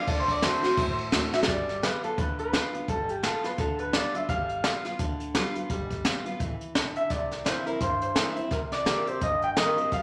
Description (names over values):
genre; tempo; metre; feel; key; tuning
rockabilly; 171 BPM; 4/4; swing 59% on 8ths; G mixolydian; A4 = 440 Hz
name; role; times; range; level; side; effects
electric guitar through a small old amp; melody; 0.0-10.0 s; G4 to G5; -31 LUFS; equal; none
picked steel-string acoustic guitar; accompaniment; 0.0-10.0 s; G2 to G4; -34 LUFS; equal; none
upright bass; bass; 0.1-10.0 s; G1 to G2; -41 LUFS; equal; none
jazz brush drum kit; drums; 0.1-10.0 s; hi-hat, kick drum, ride cymbal, snare drum; -31 LUFS; equal; none
room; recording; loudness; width
wet large studio reverb, RT60 0.9 s; none; -28 LUFS; mono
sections
0.0-1.5 A section; 1.5-10.0 B section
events
clean electric guitar solo 0.0-1.5; drum fill 1.3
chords
0.1 D7; 1.5 G7; 7.1 C7; 8.5 Cm7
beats
| 0.07 0.42 0.78 1.13 | 1.48 1.83 2.18 2.53 | 2.89 3.24 3.59 3.94 | 4.29 4.65 5.00 5.35 | 5.70 6.05 6.41 6.76 | 7.11 7.46 7.81 8.16 | 8.52 8.87 9.22 9.57 | 9.92